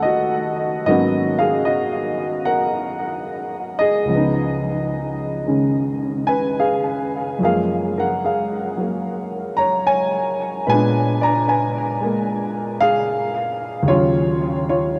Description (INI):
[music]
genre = solo jazz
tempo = 74 BPM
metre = 4/4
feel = swing 66% on 8ths, rubato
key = unclear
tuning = A4 = 440 Hz
[part]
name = warm baby grand piano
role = solo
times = 0.0-15.0 s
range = Db2 to Bb5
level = -20 LUFS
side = equal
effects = analog delay
[sound]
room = wet huge ambient reverb, RT60 8.2 s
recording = dreamy mix soaked in reverb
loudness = -20 LUFS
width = mono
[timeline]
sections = 0.0-15.0 A section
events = none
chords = 0.0 Eb7alt; 0.9 Abm11; 4.1 Db9; 7.4 Gbmaj9; 10.7 Bb7b9; 13.9 Ebm9